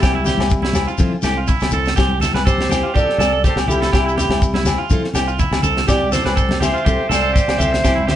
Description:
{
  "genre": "highlife guitar band",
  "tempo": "123 BPM",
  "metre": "4/4",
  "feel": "swing 54% on 16ths",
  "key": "C major",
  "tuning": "A4 = 440 Hz",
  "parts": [
    { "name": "fingerpicked steel-string acoustic guitar", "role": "melody", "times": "0.0-8.2 s", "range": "E4 to F5", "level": "-21 LUFS", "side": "right 1 dB", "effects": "none" },
    { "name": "clear trumpet", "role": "second line", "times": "0.0-8.2 s", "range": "E4 to C5", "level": "-28 LUFS", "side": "left 4 dB", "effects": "none" },
    { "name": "nylon-string guitar", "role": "accompaniment", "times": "0.0-8.2 s", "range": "F3 to A4", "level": "-26 LUFS", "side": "left 3 dB", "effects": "none" },
    { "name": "electric guitar at the edge of break-up", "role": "arpeggios", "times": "0.0-8.2 s", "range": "E4 to B4", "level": "-22 LUFS", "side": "right 6 dB", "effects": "none" },
    { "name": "fingered electric bass", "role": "bass", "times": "0.0-8.1 s", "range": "C2", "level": "-22 LUFS", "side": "equal", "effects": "none" },
    { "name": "tight funk drum kit", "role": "drums", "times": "0.0-8.2 s", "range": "kick drum, snare drum", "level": "-20 LUFS", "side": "equal", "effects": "none" },
    { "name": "agogo bells", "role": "percussion", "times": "0.0-8.0 s", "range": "none", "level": "-27 LUFS", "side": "left 10 dB", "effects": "none" },
    { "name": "shekere", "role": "percussion", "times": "0.0-8.0 s", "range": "none", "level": "-27 LUFS", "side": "left 2 dB", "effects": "none" },
    { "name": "congas", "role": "percussion", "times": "0.1-8.2 s", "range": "none", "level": "-25 LUFS", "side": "left 2 dB", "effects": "none" }
  ],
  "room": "moderate stone room reverb, RT60 1.0 s",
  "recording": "band playing live in one room, nothing above 11.0 kHz",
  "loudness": "-14 LUFS",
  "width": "side -11 dB against mid",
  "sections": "0.0-8.2 A section",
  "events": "none",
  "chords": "0.0 C; 1.0 C6; 2.0 C; 3.0 Fadd9/C; 3.9 C; 4.9 C6; 5.9 C; 6.9 Fadd9/C"
}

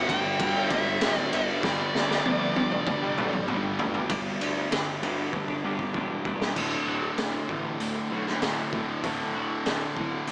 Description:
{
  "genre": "quiet-loud alternative rock",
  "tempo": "97 BPM",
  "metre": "4/4",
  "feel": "straight",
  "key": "unclear",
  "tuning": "A4 = 441 Hz",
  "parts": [
    { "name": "high-gain lead guitar", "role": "melody", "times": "0.0-3.5 s", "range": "D5 to G5", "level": "-32 LUFS", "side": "equal", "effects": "distortion" },
    { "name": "distorted electric guitar", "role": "riff", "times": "0.0-10.3 s", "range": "D2 to G3", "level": "-35 LUFS", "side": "equal", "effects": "overdrive" },
    { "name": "fuzz guitar", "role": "riff", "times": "0.0-10.3 s", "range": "D2 to G4", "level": "-35 LUFS", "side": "equal", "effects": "distortion" },
    { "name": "fuzz picked electric bass", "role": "bass", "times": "0.0-10.3 s", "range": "D1 to D2", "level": "-35 LUFS", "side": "equal", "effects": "overdrive" },
    { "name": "raw garage drum kit", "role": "drums", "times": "0.1-10.3 s", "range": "crash cymbal, hi-hat, kick drum, ride cymbal, snare drum, toms", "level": "-32 LUFS", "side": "equal", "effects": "none" },
    { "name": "twelve-string electric guitar", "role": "arpeggios", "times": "4.1-10.3 s", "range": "D2 to G4", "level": "-39 LUFS", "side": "equal", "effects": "none" }
  ],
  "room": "light reverb",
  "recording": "small speaker sound",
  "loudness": "-28 LUFS",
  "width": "mono",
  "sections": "0.0-4.1 A section; 4.1-6.6 B section; 6.6-10.3 C section",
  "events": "drum fill 1.6-4.1, 5.3-6.6",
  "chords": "0.0 G; 6.6 D"
}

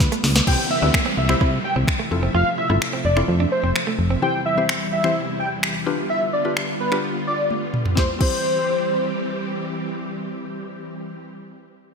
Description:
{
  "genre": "dance-pop",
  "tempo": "128 BPM",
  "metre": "4/4",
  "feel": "straight",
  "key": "C major",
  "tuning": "A4 = 440 Hz",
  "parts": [
    { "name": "string machine, violas", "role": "sustained chords", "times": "0.0-11.2 s", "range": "E2 to E5", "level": "-28 LUFS", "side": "equal", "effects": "ensemble chorus, sidechain pumping" },
    { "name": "solid FM bass", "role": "bass", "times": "0.0-4.2 s", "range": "F1 to C3", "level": "-20 LUFS", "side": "equal", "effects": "sidechain pumping" },
    { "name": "smooth R&B drum kit", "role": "drums", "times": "0.0-8.3 s", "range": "crash cymbal, finger snaps, hi-hat, kick drum, shaker, snare drum, toms", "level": "-23 LUFS", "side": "equal", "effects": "overdrive, gated reverb" },
    { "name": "direct-recorded clean electric guitar", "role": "riff", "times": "0.1-4.2 s", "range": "A3 to F4", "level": "-29 LUFS", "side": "right 6 dB", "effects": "lush chorus" },
    { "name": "wide unison lead", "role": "melody", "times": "0.5-9.3 s", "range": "B4 to G5", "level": "-23 LUFS", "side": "equal", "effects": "sidechain pumping, ping-pong delay" },
    { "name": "mallet-like synth pluck", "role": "accompaniment", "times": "0.5-11.4 s", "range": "E3 to C5", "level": "-28 LUFS", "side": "left 5 dB", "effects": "chorus, sidechain pumping" },
    { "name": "downlifter", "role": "sound effects", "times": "0.5-4.2 s", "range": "none", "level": "-29 LUFS", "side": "right 2 dB", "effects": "none" }
  ],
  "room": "moderate lush hall reverb, RT60 2.1 s",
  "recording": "bright 1980s-style digital production",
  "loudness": "-18 LUFS",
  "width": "side -5 dB against mid",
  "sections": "0.5-8.0 A section; 8.0-11.7 B section",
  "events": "drum fill 0.0-0.5, 7.5-8.0",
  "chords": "0.5 C; 2.1 Fmaj7; 4.2 C/E; 5.9 G7/D; 8.0 C"
}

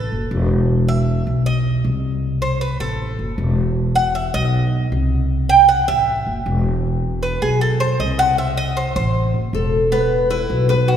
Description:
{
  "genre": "latin, Cuban son and guajira",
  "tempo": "156 BPM",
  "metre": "4/4",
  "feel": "straight",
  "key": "unclear",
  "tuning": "A4 = 444 Hz",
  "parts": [
    { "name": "Cuban tres", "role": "arpeggios", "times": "0.0-11.0 s", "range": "B3 to G5", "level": "-19 LUFS", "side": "right 3 dB", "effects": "none" },
    { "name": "upright bass", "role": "bass", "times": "0.0-11.0 s", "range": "E1 to C2", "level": "-18 LUFS", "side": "equal", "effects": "none" },
    { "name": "nylon-string guitar", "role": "melody", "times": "9.5-11.0 s", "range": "A4 to B4", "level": "-18 LUFS", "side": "left 2 dB", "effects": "none" }
  ],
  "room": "wet church reverb, RT60 2.7 s",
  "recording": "recorded in a church or concert hall",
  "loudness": "-16 LUFS",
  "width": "side -9 dB against mid",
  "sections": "0.0-9.9 A section; 9.9-11.0 B section",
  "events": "Cuban tres solo 0.0-9.9",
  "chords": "0.0 A5; 0.7 E5; 1.5 B; 2.2 Amadd9; 3.0 A5; 3.8 E5; 4.5 B; 5.3 Am7; 6.1 A5; 6.8 E5; 7.6 B7b9; 8.4 Am; 9.2 A5; 9.9 E5"
}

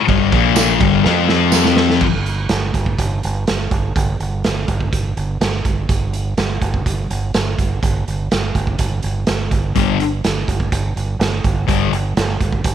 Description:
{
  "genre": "garage rock duo or trio",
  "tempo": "124 BPM",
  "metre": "4/4",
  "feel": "straight",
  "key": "unclear",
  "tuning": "A4 = 439 Hz",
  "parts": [
    { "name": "thick fuzz guitar", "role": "riff", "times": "0.1-2.0, 9.8-11.9 s", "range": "G2 to F4", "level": "-16 LUFS", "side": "left 11 dB", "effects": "distortion" },
    { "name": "growling fingered electric bass", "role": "bass", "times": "0.1-12.7 s", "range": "G1 to F2", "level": "-20 LUFS", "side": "right 2 dB", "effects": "overdrive" },
    { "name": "raw garage drum kit", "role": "drums", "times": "0.1-12.7 s", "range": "crash cymbal, hi-hat, kick drum, ride cymbal, snare drum", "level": "-19 LUFS", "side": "right 3 dB", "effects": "none" },
    { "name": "tambourine", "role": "percussion", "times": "0.6-1.6 s", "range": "none", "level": "-24 LUFS", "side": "right 16 dB", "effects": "none" }
  ],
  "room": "light reverb",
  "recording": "1960s-style stereo with parts hard left and right",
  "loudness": "-15 LUFS",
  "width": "side -9 dB against mid",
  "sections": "0.0-2.0 A section; 2.0-12.7 B section",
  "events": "drum fill 1.1-2.0",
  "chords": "0.3 Bb5; 0.8 G5; 1.1 F5; 2.0 G5"
}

